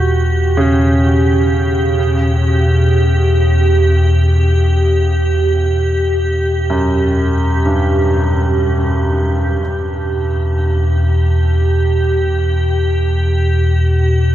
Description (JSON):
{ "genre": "dark ambient drone", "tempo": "free time", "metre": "none", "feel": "none", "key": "E dorian", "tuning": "A4 = 437 Hz", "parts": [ { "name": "bright grand piano", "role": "arpeggios", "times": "0.0-13.4 s", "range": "F#2 to F#4", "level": "-21 LUFS", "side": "right 1 dB", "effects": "tape echo" }, { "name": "deep rumbling drone", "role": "drone", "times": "0.0-14.3 s", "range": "E2 to B2", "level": "-13 LUFS", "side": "equal", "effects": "built-in reverb, phaser" }, { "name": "icy glass pad", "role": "texture", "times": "0.0-14.3 s", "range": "G4", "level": "-18 LUFS", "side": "right 2 dB", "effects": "chorus, built-in reverb" } ], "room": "wet huge ambient reverb, RT60 7.1 s", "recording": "worn, warbling old tape, cassette tape, warbly pitch drift", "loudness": "-12 LUFS", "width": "side -12 dB against mid", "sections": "0.0-9.6 A section; 9.6-14.3 B section", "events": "none", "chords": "0.0 Em69; 9.6 Em", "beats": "free time" }